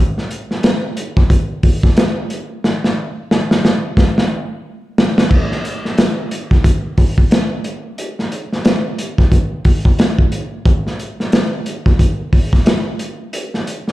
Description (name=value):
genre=funk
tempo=90 BPM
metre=4/4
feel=swing 60% on 16ths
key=none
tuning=none
part: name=crunchy breakbeat drum kit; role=drums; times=0.2-13.9 s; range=crash cymbal, hi-hat, kick drum, snare drum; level=-13 LUFS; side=equal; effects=none
room=light reverb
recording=live gig heard through the venue's PA, club reverb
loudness=-13 LUFS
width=side -16 dB against mid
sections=0.0-5.3 A section; 5.3-13.9 B section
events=drum fill 2.6-5.3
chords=none